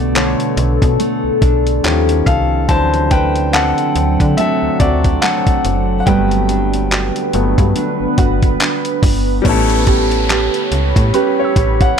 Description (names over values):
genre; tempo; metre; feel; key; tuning
contemporary R&B; 71 BPM; 4/4; swing 58% on 16ths; unclear; A4 = 438 Hz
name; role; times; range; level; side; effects
clear grand piano; accompaniment; 0.0-12.0 s; D3 to A5; -18 LUFS; left 4 dB; none
deep dark ambient pad; sustained chords; 0.0-12.0 s; D3 to B5; -20 LUFS; left 1 dB; chorus, built-in reverb
nylon-string guitar; arpeggios; 0.0-12.0 s; B2 to B4; -20 LUFS; right 10 dB; none
slap-like FM bass; bass; 0.0-11.9 s; F#1 to D3; -18 LUFS; equal; none
dusty soul sampler-style drum kit; drums; 0.2-12.0 s; handclaps, hi-hat, kick drum; -16 LUFS; equal; none
soft round pluck; texture; 8.2-12.0 s; F#5 to E6; -30 LUFS; right 3 dB; none
downlifter; sound effects; 9.4-12.0 s; none; -24 LUFS; right 1 dB; none
room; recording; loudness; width
little or no reverb; none; -12 LUFS; side -7 dB against mid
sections
0.0-9.4 A section; 9.4-12.0 B section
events
grand piano solo 0.0-9.4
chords
0.0 Bm7; 1.8 D#9; 2.7 D7; 6.1 Gmaj7; 9.4 A9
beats
0.15 1.00 1.84 | 2.69 3.53 4.38 5.22 | 6.07 6.91 7.76 8.60 | 9.45 10.29 11.14 11.98